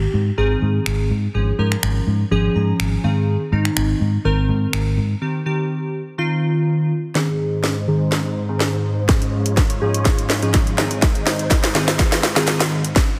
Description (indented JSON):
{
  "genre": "dance-pop",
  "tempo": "124 BPM",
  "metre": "4/4",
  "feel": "straight",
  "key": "Ab major",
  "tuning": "A4 = 436 Hz",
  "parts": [
    { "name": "glassy digital keys", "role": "accompaniment", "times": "0.0-12.8 s", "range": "Ab2 to Bb5", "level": "-24 LUFS", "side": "equal", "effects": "chorus, sidechain pumping, low-pass filter" },
    { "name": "vintage muted fingered electric bass", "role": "bass", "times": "0.0-5.1 s", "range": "Ab1 to Ab2", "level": "-21 LUFS", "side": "equal", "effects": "sidechain pumping" },
    { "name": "house drum kit", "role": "drums", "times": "0.9-13.1 s", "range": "finger snaps, hi-hat, kick drum, snare drum", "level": "-21 LUFS", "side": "equal", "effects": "soft clipping on snare" },
    { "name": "soft string machine", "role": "sustained chords", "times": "7.2-12.9 s", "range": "Ab2 to Db5", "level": "-27 LUFS", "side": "equal", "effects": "phaser, ensemble chorus, sidechain pumping, low-pass filter" },
    { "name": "group handclap", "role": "percussion", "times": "11.5-12.6 s", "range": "none", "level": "barely audible", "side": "none", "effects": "none" }
  ],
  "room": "light reverb, digital ambience",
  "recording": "dense, heavily limited modern master",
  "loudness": "-19 LUFS",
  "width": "mono",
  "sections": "0.0-7.2 A section; 7.2-13.2 B section",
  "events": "synth keys fill 2.3-3.3; drums muted 5.2-7.2; build-up 7.2-13.2; drum fill 7.2-13.0; filter sweep 7.2-13.2",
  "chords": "0.0 Cm/Ab; 1.3 Db/Ab; 3.0 Ab; 5.2 Cm; 7.2 Ab; 9.1 Db/Ab; 10.8 Ab"
}